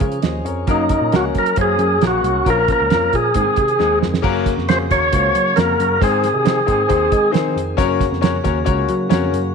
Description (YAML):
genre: uptempo 1960s-style soul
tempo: 135 BPM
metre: 4/4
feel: straight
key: unclear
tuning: A4 = 439 Hz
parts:
  - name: clear concert grand piano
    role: accompaniment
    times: 0.0-9.4 s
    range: Ab3 to Eb5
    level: -22 LUFS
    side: left 11 dB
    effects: none
  - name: tonewheel organ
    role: sustained chords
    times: 0.0-9.5 s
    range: Db3 to Bb4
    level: -27 LUFS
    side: right 1 dB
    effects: slow rotary speaker, overdrive
  - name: tine electric piano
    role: bass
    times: 0.0-9.5 s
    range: Bb1 to Ab3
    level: -22 LUFS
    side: right 1 dB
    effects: overdrive, phaser
  - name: cloth-damped thuddy drum kit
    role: drums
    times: 0.0-9.4 s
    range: crash cymbal, hi-hat, kick drum, snare drum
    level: -20 LUFS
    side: right 4 dB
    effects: none
  - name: percussive tonewheel organ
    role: melody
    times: 0.7-7.3 s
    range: Eb4 to Db5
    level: -16 LUFS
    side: equal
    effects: overdrive, fast rotary speaker
room: light reverb, studio reverb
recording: 1960s-style stereo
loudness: -14 LUFS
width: side -5 dB against mid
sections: 0.0-4.2 A section; 4.2-9.5 B section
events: drum fill 3.8-4.2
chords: 0.0 Db; 0.7 Gb; 2.5 Bbm; 3.4 Ab; 4.2 Gb; 6.0 Ab; 7.8 Gb